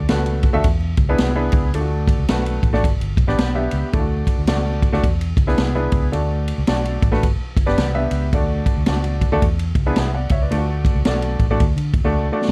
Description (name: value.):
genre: uptempo 1960s-style soul.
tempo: 110 BPM.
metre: 4/4.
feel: swing 61% on 8ths.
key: D major.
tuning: A4 = 440 Hz.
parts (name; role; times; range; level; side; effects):
clear upright piano; accompaniment; 0.0-12.5 s; A3 to G#5; -25 LUFS; equal; none.
vintage muted fingered electric bass; bass; 0.0-12.5 s; G1 to D3; -24 LUFS; equal; none.
swinging big-band drum kit; drums; 0.1-12.5 s; kick drum, ride cymbal, snare drum; -22 LUFS; equal; none.
room: small room ambience.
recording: dark, warm production, vinyl crackle.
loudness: -19 LUFS.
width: mono.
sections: 0.0-12.5 A section.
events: drum fill 12.2-12.5.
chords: 0.0 D; 0.6 E7; 1.7 D; 2.8 G; 3.9 D; 5.0 E7; 6.1 D; 7.2 G; 8.3 D; 9.4 E7; 10.5 D.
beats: 0.10 0.65 1.20 | 1.75 2.29 2.84 3.39 | 3.94 4.49 5.04 5.58 | 6.13 6.68 7.23 7.78 | 8.32 8.87 9.42 9.97 | 10.52 11.06 11.61 12.16.